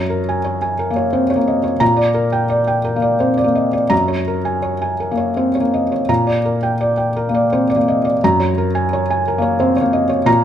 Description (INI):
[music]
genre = neoclassical minimalist piano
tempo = 86 BPM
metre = 3/4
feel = rubato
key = unclear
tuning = A4 = 440 Hz
[part]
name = felt-muted upright piano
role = solo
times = 0.0-10.4 s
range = Gb2 to Bb5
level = -14 LUFS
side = equal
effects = none
[sound]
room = wet large studio reverb, RT60 1.1 s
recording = band playing live in one room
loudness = -14 LUFS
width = side -10 dB against mid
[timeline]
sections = 0.0-10.4 A section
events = none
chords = 0.0 Gbadd9; 1.8 Bb6; 3.9 Gbadd9; 6.1 Bb6; 8.2 Gbadd9